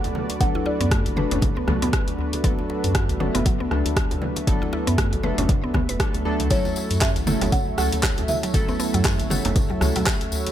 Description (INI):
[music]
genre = afro house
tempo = 118 BPM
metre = 4/4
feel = swing 57% on 16ths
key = unclear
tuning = A4 = 439 Hz
[part]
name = folk marimba with soft mallets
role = melody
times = 0.0-2.1, 6.5-9.0 s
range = C#5 to F#5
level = -30 LUFS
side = right 2 dB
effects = tape echo
[part]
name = warm analog pad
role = sustained chords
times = 0.0-10.5 s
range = A3 to E5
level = -31 LUFS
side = equal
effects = chorus, sidechain pumping
[part]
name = warm analog keys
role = stabs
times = 0.0-10.5 s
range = F#3 to A4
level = -28 LUFS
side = left 1 dB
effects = chorus, sidechain pumping, tape echo
[part]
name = deep house drum kit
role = drums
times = 0.0-10.5 s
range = handclaps, hi-hat, rim click, toms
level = -27 LUFS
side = equal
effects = none
[part]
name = congas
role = percussion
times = 0.0-10.5 s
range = none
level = -33 LUFS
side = right 4 dB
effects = none
[part]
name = djembe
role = percussion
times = 0.0-10.5 s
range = none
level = -31 LUFS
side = left 1 dB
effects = none
[part]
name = warm sub bass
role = bass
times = 0.4-9.9 s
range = E1 to F#2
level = -26 LUFS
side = equal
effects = tube saturation, sidechain pumping
[part]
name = electronic kick drum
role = drums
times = 0.4-10.2 s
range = none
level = -23 LUFS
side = equal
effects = none
[part]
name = mallet-like synth pluck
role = arpeggios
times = 0.6-10.1 s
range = C#3 to B4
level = -30 LUFS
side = right 1 dB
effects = chorus, sidechain pumping, tape echo
[part]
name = tambourine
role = percussion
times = 6.5-10.5 s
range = none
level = -34 LUFS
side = left 5 dB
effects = none
[sound]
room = digital ambience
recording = none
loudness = -20 LUFS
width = side -11 dB against mid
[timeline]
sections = 0.0-10.5 A section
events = none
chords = 0.0 Bm7/F#; 6.5 F#m7